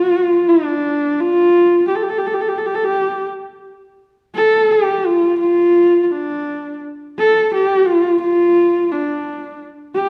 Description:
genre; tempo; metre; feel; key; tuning
mongolian traditional, Mongolian folk; 85 BPM; 4/4; straight; D yu mode; A4 = 440 Hz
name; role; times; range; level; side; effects
dark horsehead fiddle; solo; 0.0-10.1 s; D4 to A4; -16 LUFS; equal; none
room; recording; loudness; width
wet recital hall reverb, RT60 1.5 s; dark, warm production; -16 LUFS; mono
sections
0.0-10.1 A section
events
none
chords
none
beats
0.48 1.19 | 1.89 2.59 3.29 4.00 | 4.70 5.40 6.11 6.81 | 7.51 8.21 8.91 9.62

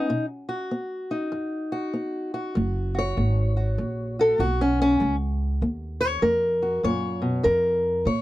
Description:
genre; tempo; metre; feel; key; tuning
acoustic country blues, solo or duo; 98 BPM; 4/4; swing 64% on 8ths; F# major; A4 = 441 Hz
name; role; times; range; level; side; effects
fingerpicked old ladder-braced acoustic guitar; melody; 0.0-8.2 s; F#2 to C#5; -23 LUFS; left 1 dB; none
upright bass; bass; 2.6-8.2 s; F#1 to A#2; -26 LUFS; right 1 dB; none
room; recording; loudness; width
little or no reverb; dry, close 1970s-style studio recording; -22 LUFS; side -16 dB against mid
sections
0.0-8.2 A section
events
steel-string acoustic guitar solo 0.0-8.2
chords
0.0 B; 2.6 F#; 7.5 C#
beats
| 0.12 0.73 1.34 1.96 | 2.57 3.18 3.79 4.40 | 5.01 5.62 6.23 6.84 | 7.45 8.06

